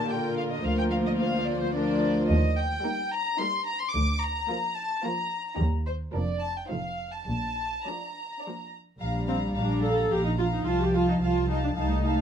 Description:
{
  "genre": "quick classical-period movement for string orchestra",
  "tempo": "109 BPM",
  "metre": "3/4",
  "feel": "straight",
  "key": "Bb major",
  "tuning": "A4 = 440 Hz",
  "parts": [
    { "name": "warm chamber violin section", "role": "melody", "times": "0.0-12.2 s", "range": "C5 to D6", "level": "-31 LUFS", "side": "left 2 dB", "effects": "none" },
    { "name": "warm chamber violin section", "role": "second line", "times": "0.0-12.2 s", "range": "D4 to F5", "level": "-35 LUFS", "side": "left 1 dB", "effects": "none" },
    { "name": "rich studio viola section", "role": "accompaniment", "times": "0.0-12.2 s", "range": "D3 to A4", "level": "-30 LUFS", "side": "equal", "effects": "none" },
    { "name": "dark chamber cello section", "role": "bass", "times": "0.0-12.2 s", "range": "D2 to A3", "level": "-30 LUFS", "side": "equal", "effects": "none" },
    { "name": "warm chamber double bass section", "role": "bass", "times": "0.6-12.2 s", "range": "F1 to Eb2", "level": "-29 LUFS", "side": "right 1 dB", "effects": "none" }
  ],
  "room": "moderate studio reverb, RT60 0.7 s",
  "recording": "dark, warm production",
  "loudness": "-25 LUFS",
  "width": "side -8 dB against mid",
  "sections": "0.0-9.0 A section; 9.0-12.2 A section",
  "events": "none",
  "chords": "0.0 Bb; 0.6 Bb/D; 2.3 Eb; 3.9 Bb/D; 5.6 Cm7/Eb (rootless); 6.1 Bb/F; 6.7 F7; 7.3 Bb; 9.0 Bb5; 10.7 F7/C",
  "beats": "0.10 | 0.65 1.20 1.74 | 2.29 2.84 3.39 | 3.93 4.48 5.03 | 5.58 6.14 6.70 | 7.28 7.86 8.44 | 9.00 9.56 10.12 | 10.67 11.22 11.77"
}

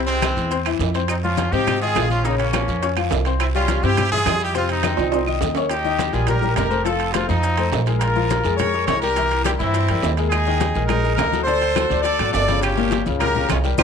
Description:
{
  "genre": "latin, salsa",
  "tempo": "208 BPM",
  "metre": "4/4",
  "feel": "straight",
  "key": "F minor",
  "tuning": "A4 = 440 Hz",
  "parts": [
    { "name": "bright upright piano", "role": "accompaniment", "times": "0.0-13.8 s", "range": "Bb2 to Db6", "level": "-24 LUFS", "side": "left 11 dB", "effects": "none" },
    { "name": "upright bass", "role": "bass", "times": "0.0-13.8 s", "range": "F1 to Ab2", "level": "-23 LUFS", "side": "right 2 dB", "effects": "none" },
    { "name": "brilliant horn section", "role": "melody", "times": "0.1-13.8 s", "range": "Ab3 to D5", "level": "-22 LUFS", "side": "equal", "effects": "none" },
    { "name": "congas", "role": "percussion", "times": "0.1-13.8 s", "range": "none", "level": "-29 LUFS", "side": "left 10 dB", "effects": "none" },
    { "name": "maracas", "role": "percussion", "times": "0.1-13.8 s", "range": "none", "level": "-41 LUFS", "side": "left 12 dB", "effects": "none" },
    { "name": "timbales", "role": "percussion", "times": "0.1-13.8 s", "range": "none", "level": "-28 LUFS", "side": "right 15 dB", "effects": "none" },
    { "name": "claves", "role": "percussion", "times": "0.2-5.4, 10.3-13.8 s", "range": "none", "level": "-29 LUFS", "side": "right 17 dB", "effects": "none" },
    { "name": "guiro", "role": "percussion", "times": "0.2-13.8 s", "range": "none", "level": "-35 LUFS", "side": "right 14 dB", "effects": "none" },
    { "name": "bongos", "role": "percussion", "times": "1.1-13.8 s", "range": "none", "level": "-33 LUFS", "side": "left 10 dB", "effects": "none" }
  ],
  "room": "light reverb, small room ambience",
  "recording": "1960s-style stereo with parts hard left and right",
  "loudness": "-17 LUFS",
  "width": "side -7 dB against mid",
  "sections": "0.0-5.7 A section; 5.7-13.8 B section",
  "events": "drum fill 4.8-5.7",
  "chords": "0.0 C; 1.1 Fm7; 2.2 Bbm; 3.4 C; 4.6 F5; 5.7 Eb; 6.9 F7; 8.0 Bbm7; 9.2 C7; 10.3 Ebsus4; 11.5 D7; 12.6 Gm7b5",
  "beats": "0.22 0.51 0.80 | 1.09 1.38 1.67 1.96 | 2.25 2.53 2.82 3.11 | 3.40 3.69 3.98 4.27 | 4.55 4.84 5.13 5.42 | 5.71 6.00 6.28 6.57 | 6.86 7.15 7.44 7.72 | 8.01 8.30 8.59 8.88 | 9.17 9.46 9.74 10.03 | 10.32 10.61 10.90 11.19 | 11.48 11.77 12.05 12.34 | 12.63 12.92 13.21 13.50 | 13.79"
}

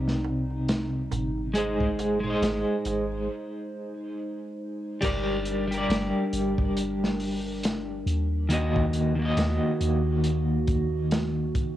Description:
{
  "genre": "trip hop",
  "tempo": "69 BPM",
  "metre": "4/4",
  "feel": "swing 59% on 16ths",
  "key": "G phrygian",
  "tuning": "A4 = 440 Hz",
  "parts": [
    { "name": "electric guitar at the edge of break-up", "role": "accompaniment", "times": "0.0-11.8 s", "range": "C3 to Eb5", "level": "-27 LUFS", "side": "equal", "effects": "tremolo, tape echo" },
    { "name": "warbly tape-like pad", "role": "sustained chords", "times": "0.0-11.8 s", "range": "C3 to C5", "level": "-33 LUFS", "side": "right 1 dB", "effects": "chorus, built-in reverb" },
    { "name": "soft 808-style bass", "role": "bass", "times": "0.0-11.5 s", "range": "G1 to Eb2", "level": "-31 LUFS", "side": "equal", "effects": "none" },
    { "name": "crunchy breakbeat drum kit", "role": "drums", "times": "0.1-11.8 s", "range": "crash cymbal, hi-hat, kick drum, snare drum", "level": "-29 LUFS", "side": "equal", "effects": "cassette tape" },
    { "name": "darbuka", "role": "percussion", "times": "0.1-3.3 s", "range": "none", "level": "-39 LUFS", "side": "right 6 dB", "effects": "none" }
  ],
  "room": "studio reverb",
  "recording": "home recording on cassette",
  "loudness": "-24 LUFS",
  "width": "side -13 dB against mid",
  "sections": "0.0-5.0 A section; 5.0-11.8 B section",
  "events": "break 3.3-5.0",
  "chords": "0.0 Cm; 1.5 Ab; 5.0 Gm; 8.5 Ebm",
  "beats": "0.68 | 1.55 2.42 3.29 4.16 | 5.02 5.89 6.76 7.63 | 8.50 9.37 10.24 11.11"
}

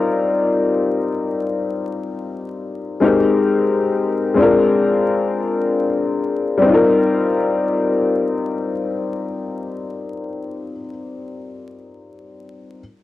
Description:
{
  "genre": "hip hop",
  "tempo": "free time",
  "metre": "none",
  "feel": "none",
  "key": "Eb major",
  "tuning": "A4 = 436 Hz",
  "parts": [
    { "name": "warm upright piano", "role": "accompaniment", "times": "0.0-12.8 s", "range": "G3 to Bb4", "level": "-17 LUFS", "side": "left 3 dB", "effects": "cassette tape" }
  ],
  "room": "wet booth ambience, RT60 0.2 s",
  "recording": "home recording on cassette, vinyl crackle",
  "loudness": "-16 LUFS",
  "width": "side -14 dB against mid",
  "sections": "0.0-6.6 A section; 6.6-10.3 B section",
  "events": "none",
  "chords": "0.0 Eb69; 3.0 Abmaj9; 4.4 Bb7; 6.6 Eb69",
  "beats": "free time"
}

